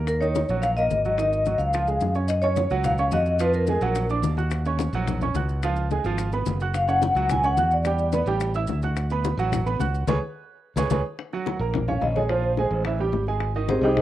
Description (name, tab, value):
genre	Afro-Cuban jazz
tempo	216 BPM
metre	4/4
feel	straight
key	F# major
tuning	A4 = 440 Hz
part	clear baby grand piano	accompaniment	0.0-14.0 s	Eb3 to F#6	-28 LUFS	right 5 dB	none
part	modern bright fingered electric bass	bass	0.0-14.0 s	F#1 to Gb2	-26 LUFS	equal	none
part	vibraphone with medium mallets	melody	0.1-4.1, 6.7-8.2, 11.9-14.0 s	C4 to G#5	-23 LUFS	left 1 dB	cassette tape
part	bongos	percussion	0.1-14.0 s	none	-34 LUFS	left 8 dB	none
part	congas	percussion	0.1-14.0 s	none	-32 LUFS	left 6 dB	none
part	maracas	percussion	0.1-11.0 s	none	-44 LUFS	left 8 dB	none
room	moderate studio reverb, RT60 0.5 s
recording	home recording on cassette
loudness	-21 LUFS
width	side -13 dB against mid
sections	0.0-2.3 A section; 2.3-11.2 B section; 11.2-14.0 C section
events	band accent 10.1-11.2; vibraphone solo 11.2-14.0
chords	0.1 Ebm7; 1.2 Ab5; 1.7 Db; 2.3 F#5; 3.4 G#m13; 4.0 A#aug; 4.5 D#m7; 5.6 C#7; 6.7 F#5; 7.9 Em7; 8.4 A5; 9.0 D6; 10.1 C#5; 11.2 Gbadd9; 12.3 Bb5; 12.9 A5; 13.4 Abmaj7